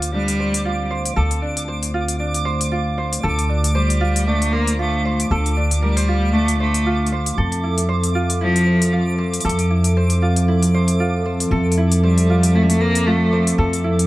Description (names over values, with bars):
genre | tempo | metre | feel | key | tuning
folktronica | 116 BPM | 4/4 | swing 56% on 16ths | D minor | A4 = 444 Hz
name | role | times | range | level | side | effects
warm analog pad | sustained chords | 0.0-14.1 s | D3 to E5 | -23 LUFS | equal | chorus, vintage 12-bit sampler grit
tenor ukulele | arpeggios | 0.0-14.1 s | D4 to C5 | -26 LUFS | right 1 dB | low-pass filter, tape echo
upright bass | bass | 0.0-14.1 s | D2 to F2 | -20 LUFS | equal | none
electronic hi-hat | drums | 0.0-14.1 s | none | -24 LUFS | left 2 dB | none
twinkling granular texture | texture | 0.0-14.1 s | D6 | -30 LUFS | right 4 dB | built-in reverb
rich cello | melody | 0.1-13.5 s | F3 to Bb3 | -21 LUFS | equal | tape echo
room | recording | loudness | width
wet studio reverb, RT60 0.5 s | vinyl crackle | -16 LUFS | side -17 dB against mid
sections
0.0-14.1 A section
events
filter sweep on analog synth pad 0.0-14.1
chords
0.0 Dm7; 7.4 Fmaj7